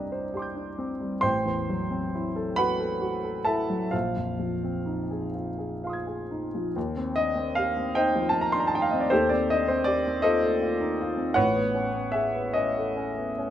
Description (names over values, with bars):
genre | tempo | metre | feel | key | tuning
classical, impressionist solo piano | 41-54 BPM (dotted quarters) | 6/8 | rubato | Eb lydian | A4 = 441 Hz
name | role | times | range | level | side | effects
clear grand piano | solo | 0.0-13.5 s | A1 to Ab6 | -24 LUFS | equal | none
room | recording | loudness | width
light reverb | close, detailed microphones | -24 LUFS | side -11 dB against mid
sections
0.0-6.8 A section; 6.8-13.5 B section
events
none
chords
0.0 Cmadd9; 1.2 Am6; 3.9 Bb9sus4; 6.8 Eb69; 9.1 F9/Eb; 11.4 Amaj9